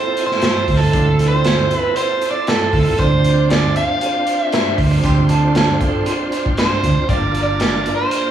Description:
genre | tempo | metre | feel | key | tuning
straight-eighth soul blues | 117 BPM | 4/4 | swing 55% on 16ths | D minor | A4 = 440 Hz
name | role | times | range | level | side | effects
overdriven electric guitar | melody | 0.0-8.3 s | A4 to F5 | -19 LUFS | right 2 dB | none
bright tonewheel organ | accompaniment | 0.0-8.3 s | Bb3 to C5 | -22 LUFS | right 2 dB | slow rotary speaker, overdrive, chorus vibrato
crunchy breakbeat drum kit | drums | 0.2-8.2 s | hi-hat, kick drum, snare drum | -20 LUFS | equal | none
vintage muted fingered electric bass | bass | 0.7-7.9 s | G1 to D2 | -17 LUFS | right 2 dB | none
brilliant horn section | sustained chords | 0.9-7.8 s | Bb3 to G4 | -26 LUFS | left 2 dB | none
electric guitar through a small old amp | second line | 4.5-6.5 s | F4 to C5 | -23 LUFS | right 3 dB | phaser
room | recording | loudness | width
moderate large studio reverb, RT60 0.8 s | band playing live in one room, studio reverb | -14 LUFS | side -10 dB against mid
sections
0.0-8.3 A section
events
none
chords
0.0 Dm7; 7.1 Gm7

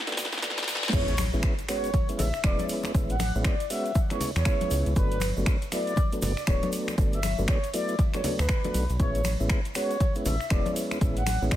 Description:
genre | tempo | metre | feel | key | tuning
deep house | 119 BPM | 4/4 | swing 61% on 16ths | A major | A4 = 443 Hz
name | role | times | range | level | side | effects
soft string machine | sustained chords | 0.0-0.9 s | B3 to G5 | -48 LUFS | right 1 dB | none
deep house drum kit | drums | 0.0-11.6 s | crash cymbal, finger snaps, hi-hat, ride cymbal, snare drum | -33 LUFS | equal | overdrive
riser, reverse cymbal and sub drop | sound effects | 0.0-2.9 s | none | -34 LUFS | left 1 dB | none
mellow tonewheel organ | stabs | 0.1-11.6 s | F#3 to F#4 | -32 LUFS | equal | overdrive, fast rotary speaker, sidechain pumping, tape echo
egg shaker | percussion | 0.1-11.6 s | none | -43 LUFS | right 4 dB | none
congas | percussion | 0.2-11.4 s | none | -36 LUFS | left 4 dB | none
round analog bass | bass | 0.3-11.5 s | D1 to E2 | -28 LUFS | equal | sidechain pumping
mellow horn-like synth lead | melody | 0.9-11.6 s | B4 to F#5 | -32 LUFS | equal | lush chorus, digital delay
electronic kick drum | drums | 0.9-11.6 s | none | -25 LUFS | equal | overdrive
room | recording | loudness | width
little or no reverb | high-pass filter | -24 LUFS | side -13 dB against mid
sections
0.9-11.6 A section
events
drum fill 0.0-0.9; riser 0.0-0.9; reverse cymbal 0.0-0.9; drop 0.9-11.6; impact 0.9-2.9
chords
0.0 Gmaj9; 0.9 Amaj9; 5.0 Gmaj9; 9.0 Amaj9

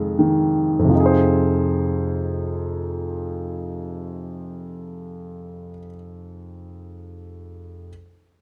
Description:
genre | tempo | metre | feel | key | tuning
classical, lyrical solo piano | 40 BPM | 3/4 | rubato | F minor | A4 = 441 Hz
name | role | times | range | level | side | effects
warm concert grand piano | solo | 0.0-7.9 s | F2 to C5 | -24 LUFS | equal | none
room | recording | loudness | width
moderate recital hall reverb, RT60 1.6 s | close, detailed microphones | -21 LUFS | mono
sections
0.9-5.4 A section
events
none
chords
0.0 Fm7

